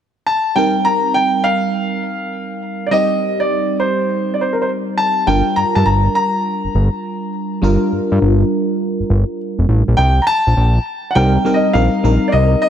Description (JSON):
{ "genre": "R&B, new jack swing", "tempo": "102 BPM", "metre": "4/4", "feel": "swing 66% on 16ths", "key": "C dorian", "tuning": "A4 = 439 Hz", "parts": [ { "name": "clear grand piano", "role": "melody", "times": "0.3-12.7 s", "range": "Bb4 to Bb5", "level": "-17 LUFS", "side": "equal", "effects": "none" }, { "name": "FM electric piano", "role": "accompaniment", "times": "0.6-12.7 s", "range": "G3 to Bb4", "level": "-19 LUFS", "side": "equal", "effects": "chorus, phaser" }, { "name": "fat analog bass", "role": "bass", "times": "5.3-12.6 s", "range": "F1 to G2", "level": "-14 LUFS", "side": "equal", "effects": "none" } ], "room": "light reverb, small room ambience", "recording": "none", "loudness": "-14 LUFS", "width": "side -9 dB against mid", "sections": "0.6-10.0 A section; 10.0-12.7 B section", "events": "none", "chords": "0.0 N.C.; 0.6 Cm7; 5.3 Gm7; 10.0 Cm7" }